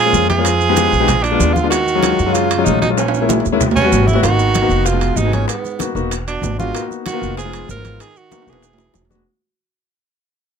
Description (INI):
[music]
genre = Afro-Cuban jazz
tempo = 191 BPM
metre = 4/4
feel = straight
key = Eb minor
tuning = A4 = 441 Hz
[part]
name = clear tenor saxophone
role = melody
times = 0.0-9.1 s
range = Cb4 to Bb4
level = -18 LUFS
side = right 4 dB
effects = none
[part]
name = mellow baritone saxophone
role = second line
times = 0.0-9.1 s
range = G2 to F3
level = -24 LUFS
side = right 8 dB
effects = none
[part]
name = upright bass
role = bass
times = 0.0-9.2 s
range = Fb1 to Bb2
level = -20 LUFS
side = right 1 dB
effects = none
[part]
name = warm concert grand piano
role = accompaniment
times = 0.1-9.2 s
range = Gb3 to Ab4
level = -19 LUFS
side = left 8 dB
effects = none
[part]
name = bongos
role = percussion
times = 0.1-9.2 s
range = none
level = -28 LUFS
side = left 8 dB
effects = none
[part]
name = congas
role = percussion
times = 0.1-9.3 s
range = none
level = -24 LUFS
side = left 1 dB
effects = none
[part]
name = maracas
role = percussion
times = 0.1-9.3 s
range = none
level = -27 LUFS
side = right 11 dB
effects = none
[part]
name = timbales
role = percussion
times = 0.3-9.2 s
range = none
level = -23 LUFS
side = right 6 dB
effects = none
[sound]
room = light reverb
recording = close, detailed microphones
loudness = -13 LUFS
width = side -7 dB against mid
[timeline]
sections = 0.0-4.2 A section; 4.2-9.3 B section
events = drum fill 3.0-4.2, 8.3-9.3; fade-out 4.2-9.3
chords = 0.5 Fm7b5; 1.1 Bb7b9; 1.7 Ebm11; 3.0 Bbm7b5; 3.6 Eb7alt; 4.2 Abm9; 4.9 Fm7b5; 5.5 Abm9; 6.1 E7; 6.7 Bmaj7#11; 7.4 Fm7b5; 8.0 Emaj9#11; 8.6 E7